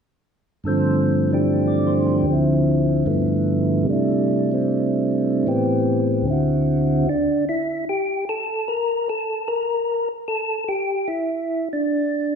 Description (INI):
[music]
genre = jazz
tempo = 150 BPM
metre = 4/4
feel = swing 64% on 8ths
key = G mixolydian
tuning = A4 = 440 Hz
[part]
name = percussive tonewheel organ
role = solo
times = 0.6-12.4 s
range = D2 to D5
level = -18 LUFS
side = equal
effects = slow rotary speaker
[sound]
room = wet recital hall reverb, RT60 1.4 s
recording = recorded in a church or concert hall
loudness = -18 LUFS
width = side -6 dB against mid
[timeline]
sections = 0.7-7.1 A section; 7.1-12.4 B section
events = none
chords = 0.7 G7sus4; 2.3 Dm7; 3.1 G13; 3.9 C69; 5.5 Am7; 6.3 D7; 7.1 N.C.